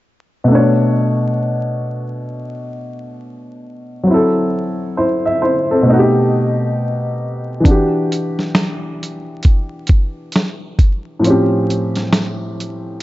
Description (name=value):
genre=lo-fi hip hop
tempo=67 BPM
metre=4/4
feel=swing 62% on 16ths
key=B minor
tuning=A4 = 440 Hz
part: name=dark upright piano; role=accompaniment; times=0.4-13.0 s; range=A2 to E5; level=-15 LUFS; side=equal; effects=cassette tape
part: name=lo-fi sampler-style drum kit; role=drums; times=7.7-13.0 s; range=hi-hat, kick drum, snare drum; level=-15 LUFS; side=equal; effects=none
room=light reverb, digital ambience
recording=vinyl crackle, nothing above 7.8 kHz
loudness=-14 LUFS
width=side -16 dB against mid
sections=0.5-13.0 A section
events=kick muted 11.2-13.0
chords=0.5 Bm9; 4.1 F#m7b5; 5.9 B7b13; 7.7 Em9; 11.2 A7alt